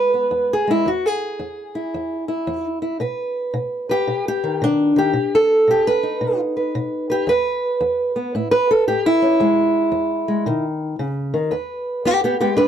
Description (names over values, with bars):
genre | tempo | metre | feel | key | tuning
acoustic country blues, solo or duo | 113 BPM | 4/4 | swing 65% on 8ths | E major | A4 = 440 Hz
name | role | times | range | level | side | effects
fingerpicked old ladder-braced acoustic guitar | solo | 0.0-12.7 s | E2 to B4 | -17 LUFS | equal | none
room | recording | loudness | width
light reverb | dark, warm production | -17 LUFS | side -9 dB against mid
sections
0.0-11.5 A section; 11.5-12.7 A section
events
steel-string acoustic guitar solo 0.0-11.5, 11.5-12.7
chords
0.0 E; 3.0 B; 7.3 E5; 8.3 A; 9.4 E; 10.5 B; 11.5 E